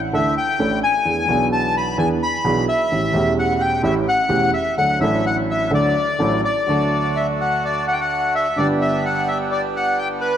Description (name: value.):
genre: tango.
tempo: 129 BPM.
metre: 4/4.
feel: rubato.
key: D major.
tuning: A4 = 437 Hz.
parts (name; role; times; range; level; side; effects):
warm concert grand piano; accompaniment; 0.0-10.3 s; E1 to A4; -21 LUFS; right 2 dB; none.
bandoneon; melody; 0.1-10.4 s; B4 to B5; -19 LUFS; left 2 dB; tape echo.
bandoneon; stabs; 6.7-10.3 s; A3 to G4; -25 LUFS; right 4 dB; tape echo.
room: wet plate reverb, RT60 2.8 s.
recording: dreamy mix soaked in reverb.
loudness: -17 LUFS.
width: side -9 dB against mid.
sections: 0.0-6.7 A section; 6.7-10.4 A section.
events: none.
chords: 0.0 Dsus2; 1.0 E7; 2.9 A7; 4.8 D; 8.6 G.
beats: 0.12 0.58 | 1.05 1.51 1.97 2.44 | 2.90 3.37 3.83 4.30 | 4.77 5.24 5.71 6.19 | 6.67 7.15 7.63 8.10 | 8.57 9.03 9.50 9.96.